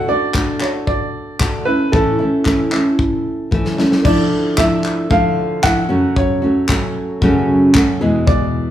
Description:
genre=acoustic pop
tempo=114 BPM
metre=4/4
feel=straight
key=unclear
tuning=A4 = 441 Hz
part: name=clear upright piano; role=melody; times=0.0-8.7 s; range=A4 to F#5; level=-20 LUFS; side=right 1 dB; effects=none
part: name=nylon-string guitar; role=accompaniment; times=0.0-8.7 s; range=E2 to G#4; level=-16 LUFS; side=equal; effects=none
part: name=modern studio drum kit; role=drums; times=0.3-8.4 s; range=crash cymbal, handclaps, kick drum, snare drum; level=-19 LUFS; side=left 1 dB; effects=none
room=moderate large studio reverb, RT60 1.1 s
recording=band playing live in one room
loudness=-13 LUFS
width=side -11 dB against mid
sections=0.0-4.1 A section; 4.1-8.7 B section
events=drum fill 3.5-4.1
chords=0.0 D; 1.7 A; 4.1 Dmadd9; 5.9 F#m; 8.0 E

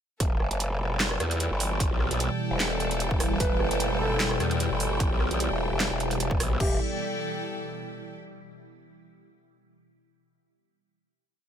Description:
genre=heavy wobble dubstep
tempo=150 BPM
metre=4/4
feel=swing 54% on 16ths, half-time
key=E minor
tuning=A4 = 440 Hz
part: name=evolving wavetable pad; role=sustained chords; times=0.7-6.8 s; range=B2 to G4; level=-33 LUFS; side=equal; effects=ensemble chorus, built-in reverb, phaser, sidechain pumping
part: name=growl bass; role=bass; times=0.2-6.8 s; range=E1 to E2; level=-28 LUFS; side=equal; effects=chorus, overdrive
part: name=dubstep drum kit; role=drums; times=0.2-6.7 s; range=crash cymbal, handclaps, hi-hat, rim click, snare drum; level=-30 LUFS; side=right 1 dB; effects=none
part: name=electronic kick drum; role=drums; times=0.2-6.7 s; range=none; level=-27 LUFS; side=equal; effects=none
part: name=rich chamber string section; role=texture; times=0.2-8.2 s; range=A4 to G5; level=-34 LUFS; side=left 2 dB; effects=sidechain pumping
part: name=felt-muted upright piano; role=melody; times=3.4-6.8 s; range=G4 to B4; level=-34 LUFS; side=right 2 dB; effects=dub echo
room=digital ambience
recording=none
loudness=-24 LUFS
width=side -9 dB against mid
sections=0.2-6.6 drop; 6.6-8.2 final chord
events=drop 0.2-6.6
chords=0.2 Em

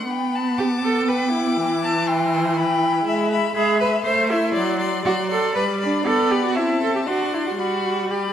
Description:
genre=quick classical-period movement for string quartet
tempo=120 BPM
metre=3/4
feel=straight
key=G major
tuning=A4 = 444 Hz
part: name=clear violin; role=melody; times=0.0-8.3 s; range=A5 to D6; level=-28 LUFS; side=left 12 dB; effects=none
part: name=clear violin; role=second line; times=0.0-8.3 s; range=D5 to A5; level=-25 LUFS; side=left 2 dB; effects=none
part: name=rich viola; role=accompaniment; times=0.0-8.3 s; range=E3 to D4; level=-24 LUFS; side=right 1 dB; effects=none
part: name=clear cello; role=bass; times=0.0-8.3 s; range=D4 to C5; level=-22 LUFS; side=right 2 dB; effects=none
room=moderate scoring stage reverb, RT60 1.5 s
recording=none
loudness=-18 LUFS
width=side -9 dB against mid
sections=0.0-8.3 A section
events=none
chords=0.1 G/B; 1.6 Em; 3.1 E/G#; 4.1 Am; 4.6 D7/F#; 5.6 G; 6.1 G/B; 6.6 Am/C; 7.1 D7; 7.6 G

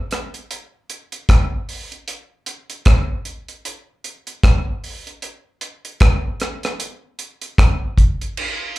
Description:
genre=reggae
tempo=76 BPM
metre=4/4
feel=swing 59% on 16ths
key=none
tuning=none
part: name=deep reggae drum kit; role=drums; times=0.1-8.8 s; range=crash cymbal, hi-hat, kick drum, rim click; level=-17 LUFS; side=equal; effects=none
room=light reverb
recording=live gig heard through the venue's PA, club reverb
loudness=-16 LUFS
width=side -18 dB against mid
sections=0.0-8.4 A section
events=none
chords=none

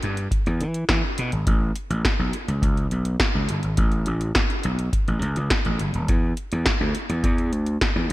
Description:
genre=early-eighties boogie funk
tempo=104 BPM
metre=4/4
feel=straight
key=unclear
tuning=A4 = 440 Hz
part: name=gritty slap bass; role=bass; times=0.0-8.1 s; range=D#1 to E3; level=-23 LUFS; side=equal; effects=overdrive
part: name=electro analog drum machine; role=drums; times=0.0-8.1 s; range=hi-hat, kick drum, snare drum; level=-23 LUFS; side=equal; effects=gated reverb
room=little or no reverb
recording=bright 1980s-style digital production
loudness=-20 LUFS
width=side -17 dB against mid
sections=0.0-8.1 A section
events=none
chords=none

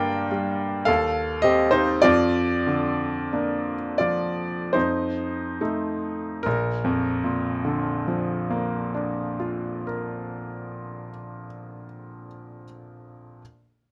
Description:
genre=classical, romantic nocturne for solo piano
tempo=33-54 BPM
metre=3/4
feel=rubato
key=Bb major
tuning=A4 = 442 Hz
part: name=clear baby grand piano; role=solo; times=0.0-13.4 s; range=Bb1 to G5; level=-25 LUFS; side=equal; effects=none
room=light reverb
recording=close, detailed microphones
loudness=-24 LUFS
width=mono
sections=0.0-6.4 A section; 6.4-11.2 B section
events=slowing down 0.0-6.4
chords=0.0 Gm; 0.9 Cm/Eb; 2.0 Bb/F; 4.8 F7; 6.4 Bb

